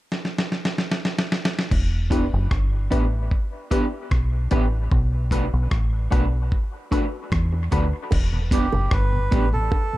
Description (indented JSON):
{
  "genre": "dub reggae",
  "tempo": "75 BPM",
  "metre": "4/4",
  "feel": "straight",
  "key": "E minor",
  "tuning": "A4 = 440 Hz",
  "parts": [
    { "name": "dusty soul sampler-style drum kit", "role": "drums", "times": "0.1-9.9 s", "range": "crash cymbal, hi-hat, kick drum, rim click, snare drum", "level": "-23 LUFS", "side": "equal", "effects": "none" },
    { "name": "deep dub fingered electric bass", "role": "bass", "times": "1.7-9.7 s", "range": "E1 to E2", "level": "-22 LUFS", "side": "equal", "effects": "none" },
    { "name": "electric guitar at the edge of break-up", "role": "accompaniment", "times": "2.1-9.4 s", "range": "A3 to B4", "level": "-28 LUFS", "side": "right 3 dB", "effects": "dub echo" },
    { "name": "filtered dub chord stab", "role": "stabs", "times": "2.1-7.9 s", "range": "D4 to B4", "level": "-32 LUFS", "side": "left 5 dB", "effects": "phaser, dub echo" },
    { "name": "bongos", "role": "percussion", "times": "8.1-9.9 s", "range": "none", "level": "-31 LUFS", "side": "right 6 dB", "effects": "dub echo" },
    { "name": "mellow tonewheel organ", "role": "accompaniment", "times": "8.3-10.0 s", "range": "E2 to E4", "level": "-31 LUFS", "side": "left 1 dB", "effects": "chorus vibrato, dub echo" },
    { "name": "melodica", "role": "melody", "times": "8.5-10.0 s", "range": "G4 to B4", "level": "-26 LUFS", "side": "right 3 dB", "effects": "dub echo" }
  ],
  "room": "little or no reverb",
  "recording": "dark, warm production",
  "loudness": "-20 LUFS",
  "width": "side -17 dB against mid",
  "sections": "0.0-1.7 A section; 1.7-8.1 B section; 8.1-10.0 C section",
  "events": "drum fill 0.1-1.7",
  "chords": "0.0 N.C.; 1.7 Em7; 4.9 Bm7; 8.1 Em7"
}